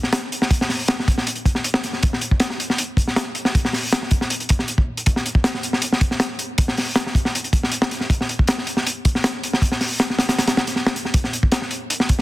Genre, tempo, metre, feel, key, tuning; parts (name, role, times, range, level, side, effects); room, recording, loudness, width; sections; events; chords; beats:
drum and bass; 158 BPM; 4/4; straight
crunchy breakbeat drum kit; drums; 0.0-12.2 s; hi-hat, kick drum, snare drum; -18 LUFS; equal
light reverb; dense, heavily limited modern master; -18 LUFS; side -17 dB against mid
0.0-12.2 A section
0.13 | 0.51 0.89 1.27 1.65 | 2.03 2.41 2.79 3.17 | 3.54 3.92 4.30 4.68 | 5.06 5.44 5.82 6.20 | 6.58 6.96 7.34 7.72 | 8.10 8.48 8.86 9.24 | 9.62 10.00 10.38 10.76 | 11.14 11.52 11.90